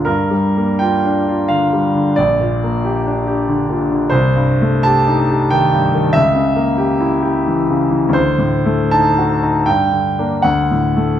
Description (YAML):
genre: classical, romantic character piece for solo piano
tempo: 73-95 BPM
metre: 3/4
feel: rubato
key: unclear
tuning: A4 = 439 Hz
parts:
  - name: bright concert grand piano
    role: solo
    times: 0.0-11.2 s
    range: Bb1 to A5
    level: -13 LUFS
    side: equal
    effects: none
room: moderate scoring stage reverb, RT60 1.6 s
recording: none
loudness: -13 LUFS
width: side -10 dB against mid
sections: 0.0-11.2 A section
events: none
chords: 0.1 Gm7; 2.2 Gm/Bb; 4.1 Am7b5/C; 6.2 C#dim7; 8.2 D7b9; 9.7 Gm; 10.4 D